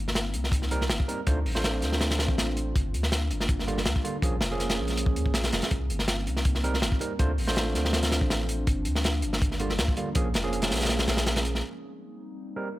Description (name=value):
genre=drum and bass, jungle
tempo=162 BPM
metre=4/4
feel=straight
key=C dorian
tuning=A4 = 442 Hz
part: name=warbly tape-like pad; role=sustained chords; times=0.0-12.8 s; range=F3 to F4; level=-36 LUFS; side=left 1 dB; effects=chorus, built-in reverb
part: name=soft dub sub bass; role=bass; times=0.0-11.6 s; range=F1 to Eb2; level=-29 LUFS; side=equal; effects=none
part: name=crunchy breakbeat drum kit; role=drums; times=0.1-11.6 s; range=hi-hat, kick drum, snare drum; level=-27 LUFS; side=equal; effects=none
part: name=overdriven tine electric piano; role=stabs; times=0.7-12.7 s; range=D3 to C5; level=-33 LUFS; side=right 3 dB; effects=low-pass filter, dub echo
room=small room ambience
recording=none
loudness=-24 LUFS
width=side -16 dB against mid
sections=0.0-11.6 A section; 11.6-12.8 B section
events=kick drops out 10.9-11.6; filter sweep on tine electric piano 11.6-12.8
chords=0.0 Cm7; 1.3 Dm7; 2.7 Gm7; 4.2 Bbm7; 5.7 Cm7; 7.2 Dm7; 8.7 Gm7; 10.2 Bbm7; 11.6 Cm7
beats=0.16 0.53 0.90 | 1.27 1.64 2.01 2.38 | 2.75 3.12 3.49 3.86 | 4.23 4.60 4.97 5.34 | 5.71 6.08 6.45 6.82 | 7.19 7.56 7.93 8.30 | 8.68 9.05 9.42 9.79 | 10.16 10.53 10.90 11.27 | 11.64 12.01 12.38 12.75